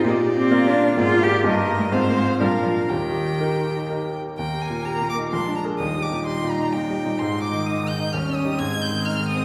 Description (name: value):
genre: quick classical-period movement for piano quartet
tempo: 128 BPM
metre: 3/4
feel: straight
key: Eb major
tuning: A4 = 440 Hz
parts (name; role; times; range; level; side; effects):
- clear violin; melody; 0.0-9.4 s; D5 to Ab6; -32 LUFS; equal; none
- clear cello; second line; 0.0-9.4 s; Eb3 to G4; -27 LUFS; equal; none
- bright baby grand piano; accompaniment; 0.0-9.4 s; Bb1 to Eb5; -26 LUFS; equal; none
- clear viola; accompaniment; 0.0-9.4 s; C4 to C5; -30 LUFS; equal; none
room: wet scoring stage reverb, RT60 2.1 s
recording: heard from further back in the room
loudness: -22 LUFS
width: mono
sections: 0.0-4.4 A section; 4.4-9.4 B section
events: none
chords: 0.0 Bb; 1.0 Bb7/Ab; 1.4 Eb/G; 1.9 Fm/Ab; 2.4 Bb; 2.9 Eb; 5.3 Bb7; 5.8 Eb; 7.2 Ab5; 8.1 Eb7; 8.6 Ab